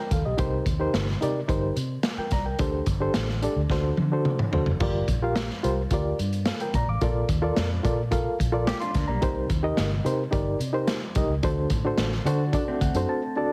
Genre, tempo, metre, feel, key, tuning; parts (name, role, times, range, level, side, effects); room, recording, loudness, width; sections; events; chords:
uptempo 1960s-style soul; 109 BPM; 4/4; straight; A4 = 440 Hz
reed electric piano; accompaniment; 0.0-13.5 s; G2 to D6; -30 LUFS; equal; fast tremolo
vintage muted fingered electric bass; bass; 0.1-13.0 s; F#1 to D3; -30 LUFS; equal
crunchy breakbeat drum kit; drums; 0.1-13.1 s; hi-hat, kick drum, snare drum, splash cymbal, toms; -30 LUFS; equal
hollow-body jazz guitar; riff; 8.7-13.5 s; G3 to G4; -35 LUFS; equal
light reverb, studio reverb; heavily compressed radio sound; -25 LUFS; mono
0.0-13.5 A section
drum fill 3.7-4.8; reed electric piano fill 12.0-13.5
0.4 Cm7; 2.6 D7sus4; 3.7 D7; 4.8 Gm7; 7.0 Bbmaj7; 9.2 Cm7; 11.4 D7